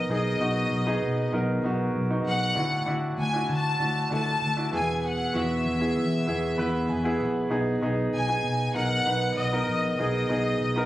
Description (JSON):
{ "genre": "piano-driven pop", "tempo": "97 BPM", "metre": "4/4", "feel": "straight", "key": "B major", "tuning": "A4 = 440 Hz", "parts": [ { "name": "clear studio violin section", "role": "melody", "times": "0.0-10.9 s", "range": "D#5 to A5", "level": "-28 LUFS", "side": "left 1 dB", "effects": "none" }, { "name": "clear concert grand piano", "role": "accompaniment", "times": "0.0-10.9 s", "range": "A2 to B5", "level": "-27 LUFS", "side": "right 1 dB", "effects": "none" }, { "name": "vintage muted fingered electric bass", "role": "bass", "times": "0.0-10.9 s", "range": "A#1 to E3", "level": "-30 LUFS", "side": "equal", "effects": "none" } ], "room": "moderate spring reverb, RT60 2.3 s", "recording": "recorded on a phone in the room, studio reverb", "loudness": "-24 LUFS", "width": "side -14 dB against mid", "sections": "0.0-10.9 A section", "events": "grand piano fill 6.3-7.5", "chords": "0.0 B6; 2.6 Dadd9; 4.7 E; 7.5 B6" }